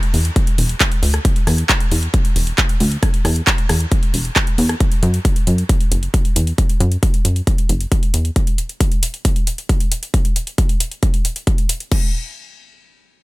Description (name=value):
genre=uplifting trance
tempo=135 BPM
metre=4/4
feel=straight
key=unclear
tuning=A4 = 435 Hz
part: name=big-room dance drum kit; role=drums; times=0.0-12.0 s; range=crash cymbal, handclaps, hi-hat, rim click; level=-21 LUFS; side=equal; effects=none
part: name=plucky analog bass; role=bass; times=0.1-8.3 s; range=E1 to F#2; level=-16 LUFS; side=equal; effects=tube saturation, sidechain pumping
part: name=electronic kick drum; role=drums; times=0.4-12.0 s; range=none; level=-16 LUFS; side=equal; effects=none
room=little or no reverb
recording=none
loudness=-15 LUFS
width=side -20 dB against mid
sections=0.0-11.9 A section; 11.9-13.2 B section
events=none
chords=none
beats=0.36 0.80 | 1.25 1.69 2.14 2.58 | 3.03 3.47 3.92 4.36 | 4.80 5.25 5.69 6.14 | 6.58 7.03 7.47 7.92 | 8.36 8.80 9.25 9.69 | 10.14 10.58 11.03 11.47 | 11.92